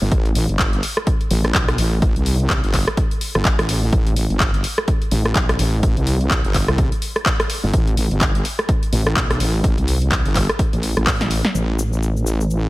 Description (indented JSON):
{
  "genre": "bass house",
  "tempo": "126 BPM",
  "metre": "4/4",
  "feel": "swing 58% on 16ths",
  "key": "unclear",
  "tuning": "A4 = 440 Hz",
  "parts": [
    { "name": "wobble bass", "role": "bass", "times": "0.0-12.7 s", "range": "G1 to C2", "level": "-19 LUFS", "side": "equal", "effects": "chorus, tube saturation, sidechain pumping" },
    { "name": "electronic kick drum", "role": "drums", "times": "0.1-11.2 s", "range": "none", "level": "-20 LUFS", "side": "equal", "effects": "none" },
    { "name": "house drum kit", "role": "drums", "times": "0.1-12.6 s", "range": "handclaps, hi-hat, rim click, shaker, snare drum", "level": "-22 LUFS", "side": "equal", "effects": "none" }
  ],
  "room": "digital ambience",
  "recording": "none",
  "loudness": "-16 LUFS",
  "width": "side -19 dB against mid",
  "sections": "0.0-11.5 A section; 11.5-12.7 B section",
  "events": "drum fill 11.2-11.5",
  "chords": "none",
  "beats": "| 0.12 0.59 1.07 1.54 | 2.02 2.50 2.97 3.45 | 3.93 4.40 4.88 5.36 | 5.83 6.31 6.78 7.26 | 7.74 8.21 8.69 9.16 | 9.64 10.12 10.59 11.07 | 11.54 12.02 12.50"
}